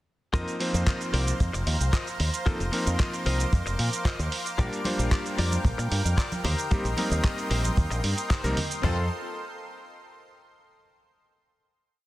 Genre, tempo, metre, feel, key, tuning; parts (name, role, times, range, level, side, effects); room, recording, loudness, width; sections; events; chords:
nu-disco, nu disco; 113 BPM; 4/4; straight; A4 = 441 Hz
bright electric grand piano; accompaniment; 0.3-9.0 s; F3 to C5; -32 LUFS; equal; tape echo
lush unison pad; sustained chords; 0.3-9.1 s; A4 to D6; -34 LUFS; equal; chorus, sidechain pumping
direct-recorded clean electric guitar; riff; 0.3-9.1 s; Eb4 to Eb5; -36 LUFS; left 3 dB; analog chorus, tape echo
fingered electric bass with an envelope filter; bass; 0.3-9.1 s; F1 to Bb2; -27 LUFS; equal
damped 70s drum kit; drums; 0.3-9.0 s; crash cymbal, kick drum, snare drum, toms; -24 LUFS; equal; small room ambience
dusty soul sampler-style drum kit; drums; 0.3-8.8 s; handclaps, hi-hat, shaker; -33 LUFS; right 2 dB; small room ambience
congas; percussion; 4.8-8.7 s; -36 LUFS; right 1 dB
light reverb, small room ambience; dense, heavily limited modern master; -24 LUFS; side -16 dB against mid
0.3-8.8 drop; 8.8-11.0 final chord
drop 0.3-8.8
0.3 F7sus4; 4.6 Bb6; 6.4 Eb6; 8.8 F